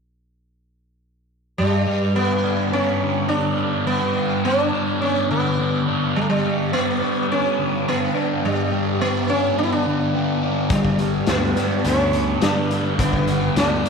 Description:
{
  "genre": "psychedelic rock",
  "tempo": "105 BPM",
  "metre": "4/4",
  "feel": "straight",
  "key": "G lydian",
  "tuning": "A4 = 440 Hz",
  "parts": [
    { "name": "sitar", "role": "melody", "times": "1.6-13.9 s", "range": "G3 to E4", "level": "-23 LUFS", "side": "right 1 dB", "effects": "slapback echo" },
    { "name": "fuzz guitar", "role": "riff", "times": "1.6-13.9 s", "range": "G2 to D4", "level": "-20 LUFS", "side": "equal", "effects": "distortion, phaser" },
    { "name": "overdriven picked electric bass", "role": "bass", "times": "10.7-13.8 s", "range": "G1 to G2", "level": "-24 LUFS", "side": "right 1 dB", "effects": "none" },
    { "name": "raw garage drum kit", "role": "drums", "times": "10.7-13.9 s", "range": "hi-hat, kick drum, snare drum", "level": "-24 LUFS", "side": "left 4 dB", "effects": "none" }
  ],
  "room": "light reverb, studio ambience",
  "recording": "1960s-style stereo, faint mains hum",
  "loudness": "-18 LUFS",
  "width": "side -5 dB against mid",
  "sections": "1.6-13.9 A section",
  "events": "none",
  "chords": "1.6 G"
}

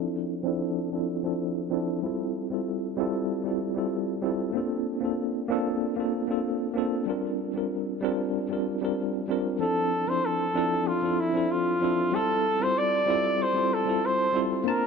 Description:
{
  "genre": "chillout",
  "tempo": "95 BPM",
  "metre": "4/4",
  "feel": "straight",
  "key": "unclear",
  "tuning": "A4 = 440 Hz",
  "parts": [
    { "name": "tine electric piano", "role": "accompaniment", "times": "0.0-14.9 s", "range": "F3 to A5", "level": "-26 LUFS", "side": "equal", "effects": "overdrive, fast stereo tremolo, auto-pan, low-pass filter, digital delay" },
    { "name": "warm flugelhorn", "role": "melody", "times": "9.6-14.9 s", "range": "E4 to D5", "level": "-25 LUFS", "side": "equal", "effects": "digital delay" }
  ],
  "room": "moderate plate reverb, RT60 3.0 s",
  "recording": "none",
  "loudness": "-25 LUFS",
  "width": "side -5 dB against mid",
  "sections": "0.0-14.9 A section",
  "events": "filter sweep on tine electric piano 0.0-14.9",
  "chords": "0.0 Dm9; 2.0 Fmaj9; 4.6 Bbmaj7; 7.1 C9sus4; 9.6 Dm9; 12.1 Fmaj9"
}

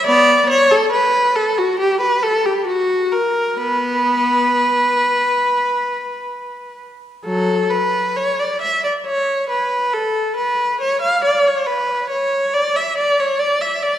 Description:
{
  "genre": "classical, baroque-style suite movement for unaccompanied viola",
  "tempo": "67 BPM",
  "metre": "4/4",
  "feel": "uneven beats, rubato",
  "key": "B minor",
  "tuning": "A4 = 438 Hz",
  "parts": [
    { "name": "clear viola", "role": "solo", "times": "0.0-14.0 s", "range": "F#3 to E#5", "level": "-15 LUFS", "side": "equal", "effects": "none" }
  ],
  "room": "wet concert hall reverb, RT60 2.4 s",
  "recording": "recorded in a church or concert hall",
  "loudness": "-15 LUFS",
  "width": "side -11 dB against mid",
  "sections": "0.0-7.3 A section; 7.3-14.0 A section",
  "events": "none",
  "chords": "none"
}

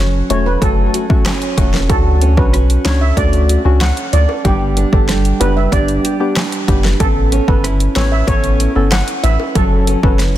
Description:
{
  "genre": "dancehall",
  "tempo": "94 BPM",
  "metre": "4/4",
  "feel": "straight",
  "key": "D major",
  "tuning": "A4 = 437 Hz",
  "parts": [
    { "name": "nylon-string guitar", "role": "arpeggios", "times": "0.0-10.4 s", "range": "F#3 to B4", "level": "-22 LUFS", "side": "right 4 dB", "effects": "none" },
    { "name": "punchy sub bass", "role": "bass", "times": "0.0-10.4 s", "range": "E1 to D2", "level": "-15 LUFS", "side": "equal", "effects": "none" },
    { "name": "steel pan", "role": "melody", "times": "0.3-10.1 s", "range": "G4 to F#5", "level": "-21 LUFS", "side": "right 3 dB", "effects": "ping-pong delay" },
    { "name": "percussive organ stab", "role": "accompaniment", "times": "0.3-10.2 s", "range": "A3 to A4", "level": "-21 LUFS", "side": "left 3 dB", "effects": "chorus, sidechain pumping" },
    { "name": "deep house drum kit", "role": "drums", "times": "0.3-10.3 s", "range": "handclaps, hi-hat, kick drum, rim click, snare drum", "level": "-16 LUFS", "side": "equal", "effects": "overdrive" },
    { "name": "bongos", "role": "percussion", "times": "0.6-10.0 s", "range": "none", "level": "-30 LUFS", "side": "left 10 dB", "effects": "none" }
  ],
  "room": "studio reverb",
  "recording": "dense, heavily limited modern master",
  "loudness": "-11 LUFS",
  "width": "side -13 dB against mid",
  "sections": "0.0-10.4 A section",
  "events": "none",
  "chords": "0.0 F#m; 1.9 Dmaj7; 4.5 G; 7.0 Aadd9; 9.6 F#m"
}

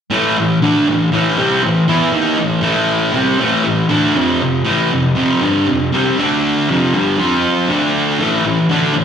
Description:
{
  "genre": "rock",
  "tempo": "119 BPM",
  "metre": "4/4",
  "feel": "straight",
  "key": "A minor",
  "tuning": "A4 = 440 Hz",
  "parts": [
    { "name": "thick fuzz guitar", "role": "solo", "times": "0.1-9.0 s", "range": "F2 to F4", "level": "-12 LUFS", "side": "equal", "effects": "distortion, slapback echo" }
  ],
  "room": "moderate lush hall reverb, RT60 2.3 s",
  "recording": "live gig heard through the venue's PA, recital hall reverb",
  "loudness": "-12 LUFS",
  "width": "side -8 dB against mid",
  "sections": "0.1-9.0 A section",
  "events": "none",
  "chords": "0.1 Am; 4.2 F5; 6.2 D5; 6.7 F5; 7.7 D5; 8.2 A5"
}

